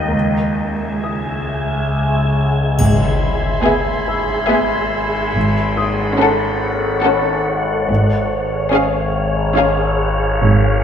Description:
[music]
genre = cinematic, suspense film score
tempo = 71 BPM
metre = 3/4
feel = straight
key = unclear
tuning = A4 = 440 Hz
[part]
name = wind-like tuned noise texture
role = sustained chords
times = 0.0-10.8 s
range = G#4 to G#5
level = -21 LUFS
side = left 1 dB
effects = built-in reverb
[part]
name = warm studio cello section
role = bass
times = 0.0-10.8 s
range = C#2 to G#2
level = -22 LUFS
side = right 2 dB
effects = none
[part]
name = overtone-sweeping drone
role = drone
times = 0.0-10.8 s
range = G#1 to D#2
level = -20 LUFS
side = left 1 dB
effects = chorus, built-in reverb
[part]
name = warm baby grand piano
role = texture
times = 0.0-10.8 s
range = D#6 to E6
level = -31 LUFS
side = left 4 dB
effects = none
[part]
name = warm studio double bass section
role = bass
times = 0.1-10.8 s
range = G#1 to C#2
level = -19 LUFS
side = right 1 dB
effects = none
[part]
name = triangle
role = percussion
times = 2.8-4.5 s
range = none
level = -34 LUFS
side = left 3 dB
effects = none
[part]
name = impact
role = sound effects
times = 2.8-5.4 s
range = none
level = -24 LUFS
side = left 1 dB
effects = none
[part]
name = rich studio violin section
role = texture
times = 2.8-7.4 s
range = B5 to B#5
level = -25 LUFS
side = left 2 dB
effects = none
[part]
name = warm studio violin section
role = second line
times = 3.6-10.2 s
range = G#4 to A4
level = -21 LUFS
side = equal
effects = none
[part]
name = warm studio viola section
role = accompaniment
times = 3.6-10.2 s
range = B3 to C#4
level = -21 LUFS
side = left 1 dB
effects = none
[part]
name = warm studio violin section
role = melody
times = 3.7-10.2 s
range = E5 to F#5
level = -23 LUFS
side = left 2 dB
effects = none
[sound]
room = moderate scoring stage reverb, RT60 1.8 s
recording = dark, warm production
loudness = -14 LUFS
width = side -8 dB against mid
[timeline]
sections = 0.0-2.8 A section; 2.8-10.8 B section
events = impact 2.8-5.4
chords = 0.1 C#m; 2.8 E/G#; 5.4 F#m/G#; 7.9 C#/G#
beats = | 0.14 1.03 1.91 | 2.79 3.65 4.50 | 5.36 6.20 7.04 | 7.89 8.74 9.58 | 10.43

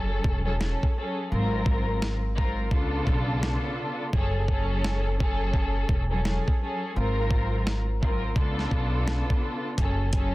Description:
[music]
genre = hip hop, boom-bap hip-hop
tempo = 85 BPM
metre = 4/4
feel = swing 62% on 16ths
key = F# harmonic minor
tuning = A4 = 440 Hz
[part]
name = dark studio string section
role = accompaniment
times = 0.0-10.3 s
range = G#2 to A#4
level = -29 LUFS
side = left 1 dB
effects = cassette tape, high-pass filter, low-pass filter
[part]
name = upright bass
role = bass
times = 0.0-10.3 s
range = E1 to C#2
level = -28 LUFS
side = equal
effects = none
[part]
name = dusty soul sampler-style drum kit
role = drums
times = 0.2-10.3 s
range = hi-hat, kick drum, snare drum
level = -26 LUFS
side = equal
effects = none
[sound]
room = small room reverb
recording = dense, heavily limited modern master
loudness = -24 LUFS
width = side -18 dB against mid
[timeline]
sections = 0.0-10.3 A section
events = break 0.0-9.8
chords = 0.0 F#madd9; 1.3 G#13; 2.7 C#7b9b13; 4.1 F#madd9; 7.0 G#13; 8.4 C#7b9b13; 9.8 F#madd9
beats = 0.60 | 1.31 2.01 2.72 3.43 | 4.13 4.84 5.54 6.25 | 6.96 7.66 8.37 9.07 | 9.78

